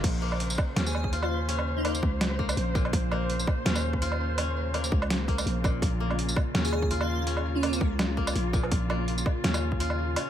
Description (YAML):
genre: half-time drum and bass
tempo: 166 BPM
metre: 4/4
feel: swing 54% on 16ths, half-time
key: Bb minor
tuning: A4 = 439 Hz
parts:
  - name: warm symphonic cello section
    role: sustained chords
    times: 0.0-10.3 s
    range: Db3 to C5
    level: -35 LUFS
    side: left 1 dB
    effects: sidechain pumping
  - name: koto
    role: arpeggios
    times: 0.0-10.3 s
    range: Bb2 to F4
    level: -34 LUFS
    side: left 2 dB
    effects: ping-pong delay
  - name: growling 808-style bass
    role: bass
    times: 0.0-10.2 s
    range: Bb1 to Eb2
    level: -29 LUFS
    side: equal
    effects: tube saturation
  - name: boom bap sampler-style drum kit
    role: drums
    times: 0.0-10.2 s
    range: crash cymbal, hi-hat, snare drum, tambourine, woodblock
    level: -31 LUFS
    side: right 2 dB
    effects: overdrive, small room ambience
  - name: electronic kick drum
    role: drums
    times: 0.0-9.8 s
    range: none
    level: -28 LUFS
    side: equal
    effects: overdrive, small room ambience
  - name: airy dreamy lead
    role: melody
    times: 0.9-1.9, 6.6-7.8 s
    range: Db4 to Ab4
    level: -34 LUFS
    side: equal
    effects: chorus, ping-pong delay
room: light reverb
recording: none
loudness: -25 LUFS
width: side -10 dB against mid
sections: 0.0-10.3 A section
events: drop 0.0-10.3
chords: 0.0 Bbmadd9